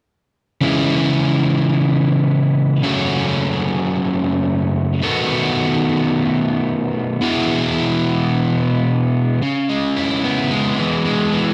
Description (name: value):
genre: rock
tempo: 110 BPM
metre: 4/4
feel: straight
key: C# minor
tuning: A4 = 440 Hz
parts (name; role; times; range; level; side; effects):
- crunchy overdriven guitar; solo; 0.6-11.5 s; F#2 to F#4; -18 LUFS; equal; cassette tape
room: light reverb, digital ambience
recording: home recording on cassette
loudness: -18 LUFS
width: mono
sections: 0.6-9.4 A section; 9.4-11.5 B section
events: none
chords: 0.6 C#m; 2.8 F#m; 5.0 B7; 7.2 E/B; 9.4 C#m7